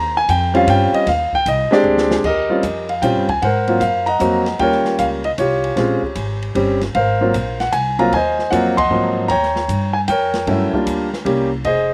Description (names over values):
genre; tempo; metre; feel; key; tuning
jazz piano trio; 153 BPM; 3/4; swing 67% on 8ths; Eb mixolydian; A4 = 442 Hz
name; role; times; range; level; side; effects
clear grand piano; melody; 0.0-11.9 s; F3 to C6; -18 LUFS; equal; none
upright bass; bass; 0.0-11.9 s; F1 to Bb2; -26 LUFS; equal; none
open jazz drum kit; drums; 0.3-11.8 s; crash cymbal, hi-hat, kick drum, ride cymbal, snare drum; -31 LUFS; equal; none
room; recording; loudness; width
little or no reverb; recorded outdoors, with no room sound; -17 LUFS; mono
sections
0.0-2.2 A section; 2.2-11.9 B section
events
grand piano solo 0.0-2.2; drum fill 1.8-2.2; band accent 8.7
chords
0.0 Eb13; 1.8 Abmaj7#11/D; 2.2 Eb13; 3.4 Ab13; 4.6 Eb13; 5.8 Bbm7; 6.6 Dbmaj7(b5, no3)/G; 6.9 Ab13; 9.3 Eb9; 10.5 Gm7; 11.2 C5